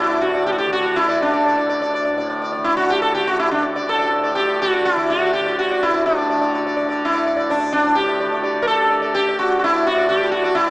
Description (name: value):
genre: indian classical, Hindustani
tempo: 125 BPM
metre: 5/4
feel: straight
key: D major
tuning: A4 = 440 Hz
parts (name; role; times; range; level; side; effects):
- sitar; melody; 0.0-10.7 s; D4 to D5; -16 LUFS; equal; none
- tanpura; drone; 0.0-10.7 s; D2 to D3; -26 LUFS; equal; none
room: wet cathedral reverb, RT60 6.1 s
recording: in a vast, echoing space, small speaker sound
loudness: -16 LUFS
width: side -22 dB against mid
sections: 0.0-10.7 A section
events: speeding up 0.0-10.7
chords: none